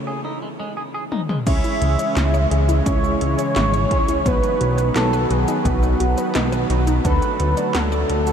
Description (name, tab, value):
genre	synthwave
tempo	86 BPM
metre	4/4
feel	straight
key	C# minor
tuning	A4 = 440 Hz
part	warm analog pad	sustained chords	0.0-8.3 s	C#3 to B3	-26 LUFS	equal	chorus, sidechain pumping
part	clean electric guitar	riff	0.1-1.4 s	G#3 to G#4	-32 LUFS	right 1 dB	wide subtle chorus, diffuse ambient delay
part	80s electronic pad drums	drums	1.1-8.3 s	crash cymbal, handclaps, hi-hat, shaker, snare drum, toms	-27 LUFS	left 1 dB	gated reverb on snare and toms
part	expressive synth lead	melody	1.5-8.3 s	F#4 to E5	-22 LUFS	equal	analog chorus, ping-pong delay
part	wide unison pluck	arpeggios	1.5-8.3 s	B3 to F#5	-28 LUFS	left 2 dB	diffuse ambient delay
part	analog synth brass	stabs	1.5-8.3 s	F#3 to C#5	-28 LUFS	right 4 dB	chorus, diffuse ambient delay
part	chorused synth bass	bass	1.5-8.3 s	G#1 to D2	-20 LUFS	equal	none
part	electronic kick drum	drums	1.5-7.2 s	none	-22 LUFS	equal	none
room	moderate huge ambient reverb, RT60 7.5 s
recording	dreamy mix soaked in reverb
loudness	-17 LUFS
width	side -8 dB against mid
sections	0.0-1.5 A section; 1.5-8.3 B section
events	break 0.1-1.5; drum fill 1.1-1.5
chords	0.1 G#5; 1.5 C#m; 4.3 B; 7.0 D